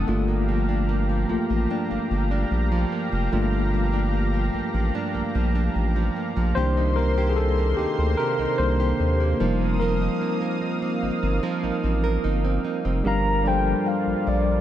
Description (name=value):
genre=R&B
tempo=74 BPM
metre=4/4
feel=straight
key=G minor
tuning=A4 = 440 Hz
part: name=tine electric piano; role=accompaniment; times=0.0-14.6 s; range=Eb3 to F5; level=-26 LUFS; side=left 2 dB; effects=fast stereo tremolo
part: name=lush unison pad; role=sustained chords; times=0.0-14.6 s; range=G3 to Eb6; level=-31 LUFS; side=equal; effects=chorus
part: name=nylon-string guitar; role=arpeggios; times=0.0-14.6 s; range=G2 to Bb4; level=-28 LUFS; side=right 6 dB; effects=digital delay
part: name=saturated sub bass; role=bass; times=0.0-14.6 s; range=F1 to Eb2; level=-24 LUFS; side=equal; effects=none
part: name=soft octave-layered synth lead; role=melody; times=13.1-14.6 s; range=D5 to Bb5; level=-25 LUFS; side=left 2 dB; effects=chorus
part: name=celesta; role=texture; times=13.9-14.6 s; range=F5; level=-38 LUFS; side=left 4 dB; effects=none
room=light reverb, small room ambience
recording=dark, warm production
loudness=-21 LUFS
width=side -12 dB against mid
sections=0.0-13.1 A section; 13.1-14.6 B section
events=tine electric piano solo 0.0-13.1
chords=0.1 Gm7; 6.6 Cm7; 9.4 F7sus4; 13.1 Gm7